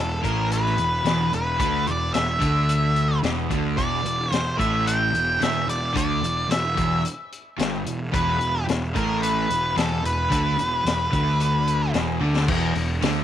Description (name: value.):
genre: blues rock power trio and southern rock.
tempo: 110 BPM.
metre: 4/4.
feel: straight.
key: E minor.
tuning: A4 = 440 Hz.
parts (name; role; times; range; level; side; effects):
octave-fuzz lead guitar; melody; 0.0-11.9 s; A4 to G5; -24 LUFS; equal; distortion.
overdriven semi-hollow guitar; riff; 0.0-13.2 s; E2 to D3; -25 LUFS; equal; none.
fuzz picked electric bass; bass; 0.0-13.2 s; E1 to D2; -27 LUFS; right 1 dB; overdrive.
vintage drum kit; drums; 0.2-13.2 s; crash cymbal, hi-hat, kick drum, snare drum, toms; -28 LUFS; left 3 dB; none.
room: light reverb, small room ambience.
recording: 1960s-style stereo.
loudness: -20 LUFS.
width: side -11 dB against mid.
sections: 0.0-12.5 A section.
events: drum fill 12.2.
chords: 0.0 E5; 12.5 E7(no3).